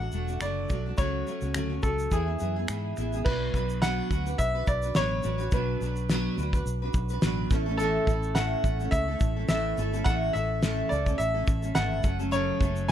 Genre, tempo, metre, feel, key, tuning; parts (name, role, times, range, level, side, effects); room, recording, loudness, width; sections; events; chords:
acoustic pop; 106 BPM; 4/4; swing 55% on 16ths; A4 = 438 Hz
clear upright piano; melody; 0.0-12.9 s; G#4 to G#5; -31 LUFS; equal
nylon-string guitar; accompaniment; 0.0-12.9 s; F#2 to B4; -31 LUFS; right 1 dB; double-tracked left and right
vintage muted fingered electric bass; bass; 0.0-12.9 s; E1 to G#2; -31 LUFS; equal
cloth-damped thuddy drum kit; drums; 0.1-12.9 s; crash cymbal, finger snaps, kick drum, shaker, snare drum; -28 LUFS; equal
studio reverb; -25 LUFS; side -10 dB against mid
0.0-3.3 A section; 3.3-12.9 B section
0.0 D; 1.0 F#m/C#; 2.1 E; 3.3 Bm; 7.5 A; 12.0 F#m